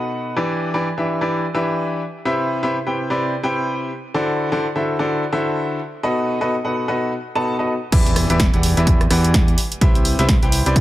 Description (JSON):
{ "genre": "piano house", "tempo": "127 BPM", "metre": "4/4", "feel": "swing 59% on 16ths", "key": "E minor", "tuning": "A4 = 442 Hz", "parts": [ { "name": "bright grand piano", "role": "riff", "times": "0.0-10.8 s", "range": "B2 to A5", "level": "-20 LUFS", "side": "equal", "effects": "sidechain pumping, low-pass filter, tape echo" }, { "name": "modern bright fingered electric bass", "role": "bass", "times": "7.9-10.8 s", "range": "C2 to E2", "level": "-19 LUFS", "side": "equal", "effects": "sidechain pumping" }, { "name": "electronic kick drum", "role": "drums", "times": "7.9-10.8 s", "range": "none", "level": "-17 LUFS", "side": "equal", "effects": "none" }, { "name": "punchy analog drum machine", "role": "drums", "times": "7.9-10.8 s", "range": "crash cymbal, hi-hat, rim click, snare drum", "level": "-22 LUFS", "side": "right 1 dB", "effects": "none" }, { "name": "impact", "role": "sound effects", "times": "8.0-9.8 s", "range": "none", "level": "-29 LUFS", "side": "right 1 dB", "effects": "none" } ], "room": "light reverb, digital ambience", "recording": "none", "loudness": "-17 LUFS", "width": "side -15 dB against mid", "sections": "0.0-7.9 A section; 7.9-10.8 B section", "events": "drop 7.9-10.8; impact 7.9-9.8", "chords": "0.4 Em7; 2.0 Cmaj7; 3.9 D9; 5.8 B7; 7.9 Em7; 9.6 Cmaj7" }